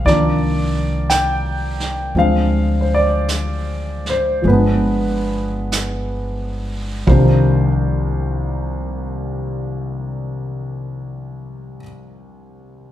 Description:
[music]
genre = jazz ballad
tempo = 42-59 BPM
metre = 4/4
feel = swing 68% on 8ths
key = C minor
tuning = A4 = 440 Hz
[part]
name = warm concert grand piano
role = accompaniment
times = 0.0-12.9 s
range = C2 to G5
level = -18 LUFS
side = equal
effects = none
[part]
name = upright bass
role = bass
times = 0.1-11.8 s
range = G1 to D2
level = -21 LUFS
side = equal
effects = none
[part]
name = vintage brush drum kit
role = drums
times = 0.1-7.8 s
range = brushed snare drum, hi-hat, kick drum, snare drum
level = -24 LUFS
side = right 2 dB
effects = none
[sound]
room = moderate large studio reverb, RT60 1.4 s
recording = band playing live in one room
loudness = -16 LUFS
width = side -12 dB against mid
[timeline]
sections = 0.0-7.1 A section; 7.1-12.7 B section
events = slowing down 0.0-7.1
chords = 0.1 Cm11; 2.2 Dm7b5; 4.4 G7b9; 7.1 Cm11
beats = 0.05 1.08 | 2.15 3.27 4.45 5.71 | 7.07 8.49 9.90 11.31

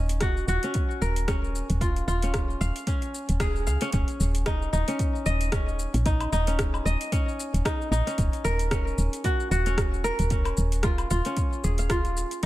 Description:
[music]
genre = organic downtempo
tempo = 113 BPM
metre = 4/4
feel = swing 57% on 16ths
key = Eb minor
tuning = A4 = 440 Hz
[part]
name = kora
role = arpeggios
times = 0.0-12.5 s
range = Db4 to F5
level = -29 LUFS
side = equal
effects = ping-pong delay
[part]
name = woody FM bass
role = bass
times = 0.0-12.5 s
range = Eb1 to Db2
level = -26 LUFS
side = equal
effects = tube saturation, sidechain pumping
[part]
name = deep house drum kit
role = drums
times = 0.1-12.5 s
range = hi-hat, rim click, shaker, woodblock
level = -34 LUFS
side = equal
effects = overdrive
[part]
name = electronic kick drum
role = drums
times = 0.2-12.5 s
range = none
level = -27 LUFS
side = equal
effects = overdrive
[sound]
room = digital ambience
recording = none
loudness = -24 LUFS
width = side -16 dB against mid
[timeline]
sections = 0.0-3.9 A section; 3.9-12.5 B section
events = band accent 3.4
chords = 0.0 Gb/Eb; 1.8 Eb9sus4; 8.2 Gb/Eb; 10.3 Eb9sus4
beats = 0.22 0.75 1.28 | 1.81 2.34 2.87 3.40 | 3.94 4.47 5.00 5.53 | 6.06 6.59 7.12 7.65 | 8.18 8.71 9.24 9.78 | 10.31 10.84 11.37 11.90 | 12.43

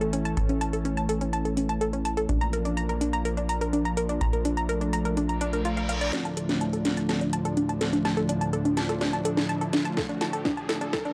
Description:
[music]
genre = melodic techno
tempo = 125 BPM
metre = 4/4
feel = straight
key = D harmonic minor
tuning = A4 = 439 Hz
[part]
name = lush unison pad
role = sustained chords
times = 0.0-11.1 s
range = D2 to D4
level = -32 LUFS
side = equal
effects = chorus, sidechain pumping
[part]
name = analog pluck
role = arpeggios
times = 0.0-11.1 s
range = C#4 to Bb5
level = -31 LUFS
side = equal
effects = chorus, sidechain pumping, analog delay
[part]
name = tight sequencer bass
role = bass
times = 0.0-6.1 s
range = A1 to Bb1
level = -32 LUFS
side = equal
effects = sidechain pumping
[part]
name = house drum kit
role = drums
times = 0.0-11.1 s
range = hi-hat, snare drum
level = -36 LUFS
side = equal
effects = none
[part]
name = reverse cymbal and riser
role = sound effects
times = 5.4-11.1 s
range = none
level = -42 LUFS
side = equal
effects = none
[part]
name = electronic kick drum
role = drums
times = 10.0-11.0 s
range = none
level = -37 LUFS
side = equal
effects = none
[sound]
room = light reverb, digital ambience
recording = dry, gritty hardware recording, cassette tape, high-pass filter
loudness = -27 LUFS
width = mono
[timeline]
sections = 0.0-6.1 A section; 6.1-11.1 B section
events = reverse cymbal 5.4-6.1; build-up 6.1-11.1; drum fill 6.1-11.1; filter sweep on synth pluck 6.1-11.1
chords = 0.0 A; 2.3 Bb; 6.1 Dm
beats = | 0.37 0.85 1.33 1.81 | 2.29 2.77 3.25 3.73 | 4.21 4.69 5.17 5.65 | 6.13 6.61 7.09 7.57 | 8.05 8.53 9.01 9.49 | 9.97 10.45 10.93

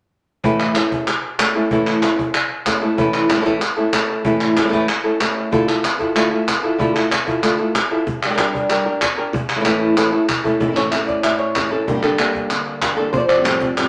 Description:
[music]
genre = flamenco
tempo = 189 BPM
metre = 4/4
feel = straight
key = A phrygian dominant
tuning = A4 = 440 Hz
[part]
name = flamenco guitar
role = melody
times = 0.4-13.9 s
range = A2 to E5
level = -20 LUFS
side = equal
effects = none
[part]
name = cajon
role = percussion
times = 0.4-13.8 s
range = none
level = -30 LUFS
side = equal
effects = none
[part]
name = palmas hand claps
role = percussion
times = 0.6-13.9 s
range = none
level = -23 LUFS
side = equal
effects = none
[part]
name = flamenco guitar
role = stabs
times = 10.6-13.9 s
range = F2 to G4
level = -25 LUFS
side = equal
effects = none
[sound]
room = wet studio reverb, RT60 0.8 s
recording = none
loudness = -18 LUFS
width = mono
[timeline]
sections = 0.4-10.6 A section; 10.6-13.9 B section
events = drum fill 9.7-10.6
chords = 0.4 A; 5.5 Dmadd9; 8.1 Gm; 9.3 A; 11.9 Gm; 13.1 Fadd9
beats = | 0.44 0.76 1.08 1.39 | 1.71 2.03 2.35 2.67 | 2.98 3.30 3.62 3.94 | 4.26 4.58 4.89 5.21 | 5.53 5.85 6.16 6.48 | 6.80 7.12 7.43 7.75 | 8.07 8.38 8.70 9.02 | 9.34 9.65 9.97 10.29 | 10.60 10.92 11.24 11.55 | 11.87 12.19 12.51 12.82 | 13.14 13.46 13.78

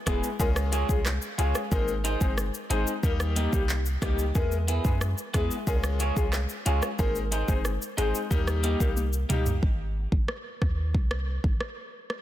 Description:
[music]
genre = dancehall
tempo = 91 BPM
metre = 4/4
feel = straight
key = Ab major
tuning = A4 = 442 Hz
[part]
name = hollow clarinet-like synth lead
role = melody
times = 0.1-8.9 s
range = G4 to C5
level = -35 LUFS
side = left 2 dB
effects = chorus, tape echo
[part]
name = clear grand piano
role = accompaniment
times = 0.1-9.5 s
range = G3 to G#4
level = -33 LUFS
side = left 6 dB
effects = none
[part]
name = electric guitar at the edge of break-up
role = arpeggios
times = 0.1-9.5 s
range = Bb3 to Db5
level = -34 LUFS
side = right 2 dB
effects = tape echo
[part]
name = warm 808-style bass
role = bass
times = 0.1-11.6 s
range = E1 to Gb2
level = -28 LUFS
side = equal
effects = none
[part]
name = afro-pop drum kit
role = drums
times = 0.1-12.2 s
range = handclaps, hi-hat, kick drum, rim click, shaker, toms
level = -28 LUFS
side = equal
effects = soft clipping on snare
[sound]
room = little or no reverb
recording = dense, heavily limited modern master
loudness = -24 LUFS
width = side -13 dB against mid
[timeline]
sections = 0.0-9.6 A section; 9.6-12.2 B section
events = drum fill 9.0-9.6; hi-hats muted 9.6-12.2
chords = 0.4 Db; 1.7 Ab; 3.0 Eb; 4.4 E; 5.7 Db; 7.0 Ab; 8.3 Eb; 9.6 Ab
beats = 0.40 1.06 | 1.72 2.38 3.03 3.69 | 4.35 5.01 5.67 6.33 | 6.99 7.65 8.31 8.97 | 9.63 10.29 10.95 11.61

